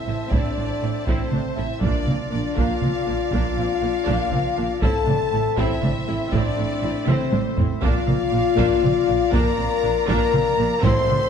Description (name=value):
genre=cinematic, epic orchestral film score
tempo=80 BPM (dotted quarters)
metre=12/8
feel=straight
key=unclear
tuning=A4 = 439 Hz
part: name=rich symphonic violin section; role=melody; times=0.0-11.3 s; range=C5 to C6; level=-32 LUFS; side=left 3 dB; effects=none
part: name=baroque flute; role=second line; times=0.0-11.3 s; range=C5 to C6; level=-32 LUFS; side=equal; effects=none
part: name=clear symphonic violin section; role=second line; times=0.0-11.3 s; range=C5 to A5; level=-36 LUFS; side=left 3 dB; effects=none
part: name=mellow French horn section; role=sustained chords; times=0.0-11.3 s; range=C4 to C5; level=-24 LUFS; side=left 8 dB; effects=none
part: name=mellow woodwind section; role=sustained chords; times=0.0-11.3 s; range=Bb3 to E5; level=-33 LUFS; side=right 1 dB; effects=none
part: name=clear symphonic viola section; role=accompaniment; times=0.1-11.2 s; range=Bb3 to E4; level=-30 LUFS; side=right 3 dB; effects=none
part: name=rich symphonic cello section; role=bass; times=0.1-11.2 s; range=A2 to Bb2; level=-28 LUFS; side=right 3 dB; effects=none
part: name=rich symphonic double bass section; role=bass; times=0.1-11.2 s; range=A1 to Bb1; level=-28 LUFS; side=right 4 dB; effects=none
part: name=taiko ensemble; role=drums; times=0.3-11.3 s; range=none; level=-24 LUFS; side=right 1 dB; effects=none
part: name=timpani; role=percussion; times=10.8-11.3 s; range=A2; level=-26 LUFS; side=right 1 dB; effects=none
room=moderate scoring stage reverb, RT60 1.6 s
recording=dark, warm production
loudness=-19 LUFS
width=side -7 dB against mid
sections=0.0-11.3 A section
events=drum fill 7.1-7.8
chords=0.0 Am; 1.8 Bb; 4.8 Am; 7.8 Bb